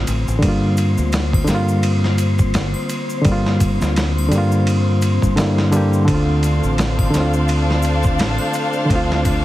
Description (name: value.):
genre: trip hop.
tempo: 85 BPM.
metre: 4/4.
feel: swing 57% on 16ths.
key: unclear.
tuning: A4 = 440 Hz.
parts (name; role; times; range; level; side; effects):
barky reed electric piano; accompaniment; 0.0-9.4 s; D3 to G4; -19 LUFS; equal; overdrive, tremolo, tape echo.
deep dub fingered electric bass; bass; 0.0-9.4 s; G1 to G2; -19 LUFS; equal; tube saturation.
wind-like tuned noise texture; texture; 0.0-9.4 s; C4 to C5; -28 LUFS; left 3 dB; built-in reverb.
dusty soul sampler-style drum kit; drums; 0.1-9.4 s; kick drum, ride cymbal, snare drum; -22 LUFS; equal; overdrive.
tube shaker and triangle; percussion; 0.1-9.4 s; none; -36 LUFS; left 2 dB; none.
clear studio string section; sustained chords; 6.1-9.4 s; D4 to F5; -22 LUFS; left 1 dB; none.
room: light reverb, digital ambience.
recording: heavily compressed radio sound, vinyl crackle.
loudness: -15 LUFS.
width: side -15 dB against mid.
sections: 0.0-9.4 A section.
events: none.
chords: 0.4 Gm7; 6.1 Dm7.